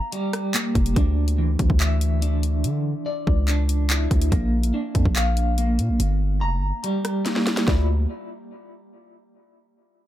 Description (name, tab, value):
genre	hip hop, drill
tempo	143 BPM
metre	4/4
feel	half-time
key	D harmonic minor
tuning	A4 = 440 Hz
part	electric guitar at the edge of break-up	arpeggios	0.0-7.9 s	E3 to Bb5	-26 LUFS	equal	tremolo, analog delay
part	drill drum kit	drums	0.1-7.8 s	handclaps, hi-hat, kick drum, rim click, snare drum	-23 LUFS	equal	none
part	distorted 808-style bass	bass	0.8-8.1 s	F1 to D3	-21 LUFS	equal	distortion
room	little or no reverb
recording	echo-heavy mix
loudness	-20 LUFS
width	side -13 dB against mid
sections	0.0-7.7 A section; 7.7-9.4 B section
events	drum fill 7.3-7.7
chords	0.0 Gm; 1.0 Dsus2; 4.3 Bb; 6.0 Gm; 7.7 Dmadd9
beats	0.12 0.54 | 0.96 1.38 1.80 2.22 | 2.64 3.06 3.48 3.90 | 4.32 4.74 5.16 5.58 | 6.00 6.42 6.84 7.26 | 7.68